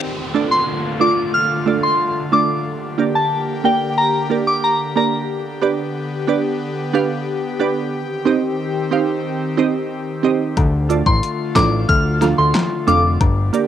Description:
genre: dancehall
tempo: 91 BPM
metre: 4/4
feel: straight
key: unclear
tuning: A4 = 440 Hz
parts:
  - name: airy breathy pad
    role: sustained chords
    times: 0.0-13.7 s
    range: D3 to G4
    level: -24 LUFS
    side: left 2 dB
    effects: chorus, sidechain pumping, cassette tape
  - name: reverse cymbal and downlifter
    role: sound effects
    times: 0.0-5.3 s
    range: none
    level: -30 LUFS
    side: left 1 dB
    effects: none
  - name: glassy wavetable pluck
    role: accompaniment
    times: 0.3-13.7 s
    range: A3 to F5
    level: -19 LUFS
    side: right 7 dB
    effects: chorus, cassette tape
  - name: soft synth bell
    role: melody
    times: 0.5-5.1, 11.1-13.0 s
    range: G5 to F6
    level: -18 LUFS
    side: left 1 dB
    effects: chorus, phaser, cassette tape, analog delay
  - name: fat analog bass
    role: bass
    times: 10.6-13.5 s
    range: F1 to D2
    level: -18 LUFS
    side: left 1 dB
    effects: none
  - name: pop drum kit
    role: drums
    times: 10.6-13.7 s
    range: handclaps, hi-hat, kick drum, snare drum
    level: -18 LUFS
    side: left 1 dB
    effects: overdrive, cassette tape
  - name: woodblock and cabasa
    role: percussion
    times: 10.6-13.7 s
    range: none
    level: -27 LUFS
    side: left 9 dB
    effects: none
room: light reverb, digital ambience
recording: home recording on cassette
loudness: -16 LUFS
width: side -10 dB against mid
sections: 0.0-13.7 A section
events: none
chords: 0.0 Dm; 2.7 Gm; 5.3 G; 7.9 Cm; 10.6 Dm

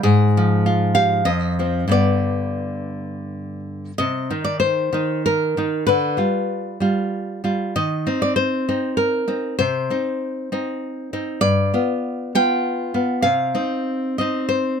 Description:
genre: romantic piece for solo classical guitar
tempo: 86-100 BPM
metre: 3/4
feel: rubato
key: C minor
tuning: A4 = 440 Hz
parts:
  - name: nylon-string guitar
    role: solo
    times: 0.0-14.8 s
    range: F2 to G5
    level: -18 LUFS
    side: equal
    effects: none
room: light reverb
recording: close, detailed microphones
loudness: -18 LUFS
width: side -7 dB against mid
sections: 0.0-4.0 A section; 4.0-14.8 B section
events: none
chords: 0.0 Fmadd9/Ab; 1.3 F5; 1.9 G; 4.0 Cm; 5.9 G7/D; 7.8 Cm/Eb; 9.6 Cm; 11.4 G7; 13.3 Cm

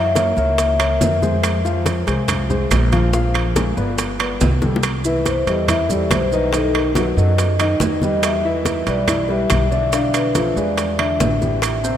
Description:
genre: Afro-Cuban jazz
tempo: 141 BPM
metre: 4/4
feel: straight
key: C major from 4.8 s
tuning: A4 = 439 Hz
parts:
  - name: vibraphone with soft mallets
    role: melody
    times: 0.0-1.2, 5.1-11.6 s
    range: A4 to F5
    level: -22 LUFS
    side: left 1 dB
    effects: slapback echo
  - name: warm concert grand piano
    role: accompaniment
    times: 0.0-12.0 s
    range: C3 to F5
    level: -22 LUFS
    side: left 2 dB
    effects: none
  - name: upright bass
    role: bass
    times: 0.0-12.0 s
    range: G1 to F#2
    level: -21 LUFS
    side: equal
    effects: none
  - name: bongos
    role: percussion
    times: 0.2-11.8 s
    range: none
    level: -29 LUFS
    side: left 5 dB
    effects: none
  - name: congas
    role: percussion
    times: 0.2-12.0 s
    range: none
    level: -26 LUFS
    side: equal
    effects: none
  - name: maracas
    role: percussion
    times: 0.2-12.0 s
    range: none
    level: -32 LUFS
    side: right 8 dB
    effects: none
  - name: timbales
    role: percussion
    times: 0.2-11.8 s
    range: none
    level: -25 LUFS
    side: right 6 dB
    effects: none
  - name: claves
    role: percussion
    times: 0.8-11.8 s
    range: none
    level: -34 LUFS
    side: right 8 dB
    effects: none
room: wet cathedral reverb, RT60 6.1 s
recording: in a vast, echoing space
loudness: -15 LUFS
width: side -10 dB against mid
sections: 0.0-4.8 A section; 4.8-12.0 B section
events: drum fill 4.6; vibraphone solo 4.8-12.0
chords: 0.0 Gb9; 1.4 Fm; 3.1 Bb5; 4.0 G; 4.8 C6; 6.5 B7; 8.2 Em7; 9.9 Bm7b5; 10.8 E7

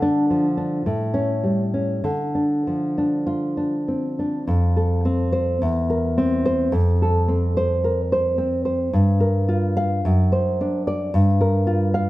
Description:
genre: romantic piece for solo classical guitar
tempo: 48-56 BPM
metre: 2/4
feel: rubato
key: D minor, F major from 4.5 s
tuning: A4 = 440 Hz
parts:
  - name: nylon-string guitar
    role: solo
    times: 0.0-12.1 s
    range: E2 to F5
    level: -18 LUFS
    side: equal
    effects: none
room: moderate recital hall reverb, RT60 1.4 s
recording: dark, warm production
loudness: -18 LUFS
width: side -17 dB against mid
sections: 0.0-4.5 A section; 4.5-12.1 B section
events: none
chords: 0.0 Dm; 0.9 A7; 2.0 Dm; 4.5 F; 5.6 C7/E; 6.7 F; 8.9 Gm7; 10.0 D7/F#; 11.1 Gm7

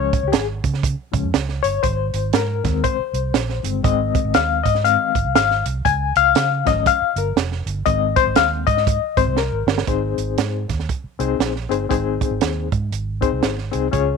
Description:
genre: uptempo 1960s-style soul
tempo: 119 BPM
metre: 4/4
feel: swing 61% on 8ths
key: Ab major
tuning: A4 = 440 Hz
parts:
  - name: barky reed electric piano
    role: accompaniment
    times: 0.0-14.2 s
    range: Ab2 to Ab5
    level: -19 LUFS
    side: left 13 dB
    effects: overdrive, fast tremolo
  - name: vintage muted fingered electric bass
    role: bass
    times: 0.0-14.2 s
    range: F1 to Db3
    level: -24 LUFS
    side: right 2 dB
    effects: none
  - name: compact cocktail drum kit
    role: drums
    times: 0.1-14.1 s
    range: hi-hat, kick drum, snare drum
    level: -21 LUFS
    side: right 7 dB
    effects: none
room: light reverb, small room ambience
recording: 1960s-style stereo with parts hard left and right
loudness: -17 LUFS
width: side -5 dB against mid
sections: 0.0-9.9 A section; 9.9-14.2 B section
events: reed electric piano solo 0.0-9.9; drum fill 9.4-9.9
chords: 0.0 Db; 1.8 Ab; 5.9 Db; 7.9 Ab

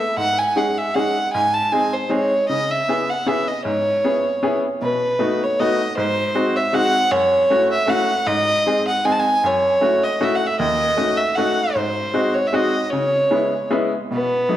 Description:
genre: musette waltz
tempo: 155 BPM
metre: 3/4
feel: swing 53% on 8ths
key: C# minor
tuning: A4 = 440 Hz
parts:
  - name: dark violin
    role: melody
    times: 0.0-14.6 s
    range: B3 to A5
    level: -18 LUFS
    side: right 1 dB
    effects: none
  - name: bright upright piano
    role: accompaniment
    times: 0.2-14.6 s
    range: D#2 to G#4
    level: -21 LUFS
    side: left 1 dB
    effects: none
room: wet recital hall reverb, RT60 1.7 s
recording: none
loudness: -17 LUFS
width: side -12 dB against mid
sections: 0.0-4.8 A section; 4.8-14.1 B section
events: none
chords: 0.2 G#sus4; 1.3 G#; 2.5 C#m7; 4.8 B7; 6.0 G#7; 7.1 F#m7; 8.3 G#; 9.4 F#m7; 10.6 D#m7b5; 11.8 G#7; 12.9 C#m7

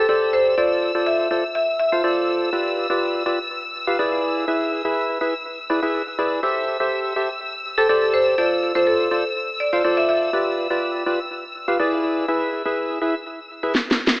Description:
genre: piano house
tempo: 123 BPM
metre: 4/4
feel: straight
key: unclear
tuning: A4 = 440 Hz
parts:
  - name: marimba with hard mallets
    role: melody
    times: 0.0-2.2, 7.8-10.2 s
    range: A4 to E5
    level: -20 LUFS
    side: equal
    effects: tape echo
  - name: clear studio violin section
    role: sustained chords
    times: 0.0-13.7 s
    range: E6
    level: -28 LUFS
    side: left 1 dB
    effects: none
  - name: percussive organ stab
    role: riff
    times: 0.0-13.7 s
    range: E4 to A5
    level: -21 LUFS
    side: equal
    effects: wide subtle chorus, tape echo
  - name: electronic snare drum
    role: drums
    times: 13.7-14.2 s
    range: none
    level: -17 LUFS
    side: equal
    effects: low-pass filter on hats, small room ambience, low-pass filter on perc, low-pass filter on snare, tape echo
room: moderate plate reverb, RT60 1.0 s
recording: echo-heavy mix, AM radio sound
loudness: -18 LUFS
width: side -20 dB against mid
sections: 0.0-14.2 A section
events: drum fill 13.7-14.2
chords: 0.0 Am7; 0.6 Dm7; 2.5 G7; 4.2 E; 6.4 Am7; 8.4 Dm7; 10.3 G7; 12.0 E

